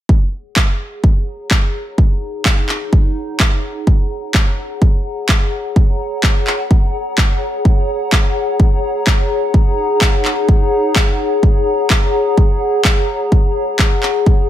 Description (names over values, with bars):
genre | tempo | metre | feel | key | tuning
piano house | 127 BPM | 4/4 | swing 53% on 16ths | unclear | A4 = 441 Hz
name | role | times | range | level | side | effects
electronic kick drum | drums | 0.1-14.4 s | none | -13 LUFS | equal | none
warbly tape-like pad | texture | 0.7-14.5 s | D#4 to A#5 | -19 LUFS | left 2 dB | chorus, built-in reverb, sidechain pumping
electronic handclaps | drums | 0.6-14.1 s | none | -18 LUFS | equal | none
room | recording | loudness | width
light reverb | none | -13 LUFS | side -12 dB against mid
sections
0.1-14.5 A section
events
none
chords
0.1 F#; 1.7 D#m7; 5.8 G#9sus4; 9.3 D#m7; 13.3 G#9sus4